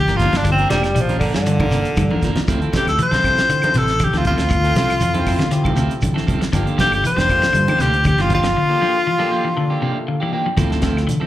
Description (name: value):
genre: afrobeat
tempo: 119 BPM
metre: 4/4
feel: straight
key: unclear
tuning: A4 = 440 Hz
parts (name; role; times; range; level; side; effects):
- edgy tenor saxophone; melody; 0.0-9.8 s; D3 to C5; -18 LUFS; left 1 dB; plate reverb, slapback echo
- clean electric guitar; arpeggios; 0.0-11.3 s; C3 to F3; -23 LUFS; left 3 dB; none
- fingered electric bass; bass; 0.0-11.2 s; F1 to D3; -22 LUFS; equal; none
- electric guitar at the edge of break-up; stabs; 0.1-11.3 s; F3 to Bb4; -26 LUFS; right 4 dB; slapback echo, plate reverb
- damped 70s drum kit; drums; 0.1-11.2 s; hi-hat, kick drum, snare drum; -23 LUFS; right 1 dB; none
- congas; percussion; 0.2-10.8 s; none; -26 LUFS; right 1 dB; none
- shekere; percussion; 0.2-11.2 s; none; -27 LUFS; right 1 dB; none
- overdriven tine electric piano; accompaniment; 0.3-11.1 s; Bb3 to G5; -30 LUFS; left 2 dB; analog chorus, plate reverb, slapback echo
- claves; percussion; 0.4-11.1 s; none; -34 LUFS; left 2 dB; none
room: moderate club reverb, RT60 0.6 s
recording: live gig heard through the venue's PA, club reverb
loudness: -15 LUFS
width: side -13 dB against mid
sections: 0.0-10.6 A section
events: tenor saxophone solo 0.0-10.6; drum fill 2.0-2.5; break 8.6-10.6; tine electric piano fill 9.6-10.6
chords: 0.0 Gm7; 2.5 Dm9; 6.5 Gm7; 10.6 Dm9